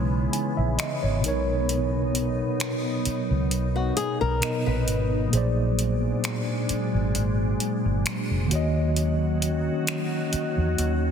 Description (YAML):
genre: contemporary R&B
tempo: 66 BPM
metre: 4/4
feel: swing 54% on 16ths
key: unclear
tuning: A4 = 440 Hz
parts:
  - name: mellow tine electric piano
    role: accompaniment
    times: 0.0-11.1 s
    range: A#2 to G#5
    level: -27 LUFS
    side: right 1 dB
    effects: medium stereo tremolo
  - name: glassy FM pad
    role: sustained chords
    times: 0.0-11.1 s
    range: C#3 to F#4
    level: -29 LUFS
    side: equal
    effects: ensemble chorus, built-in reverb
  - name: vintage muted fingered electric bass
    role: bass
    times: 0.0-11.1 s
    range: E#1 to E2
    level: -26 LUFS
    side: equal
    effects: none
  - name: smooth R&B drum kit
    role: drums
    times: 0.3-11.0 s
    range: finger snaps, hi-hat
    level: -31 LUFS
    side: equal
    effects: soft clipping on snare
  - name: flamenco guitar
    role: arpeggios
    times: 3.8-5.3 s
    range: F#4 to B4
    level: -28 LUFS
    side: left 6 dB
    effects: digital delay
room: light reverb, digital ambience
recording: dense, heavily limited modern master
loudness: -22 LUFS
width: side -7 dB against mid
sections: 0.0-11.1 A section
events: break 0.0-11.1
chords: 0.0 C#m7; 1.2 Bmaj7; 5.3 A#7; 8.5 D#m7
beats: 0.78 | 1.69 2.60 3.51 4.42 | 5.33 6.24 7.15 8.06 | 8.96 9.87 10.78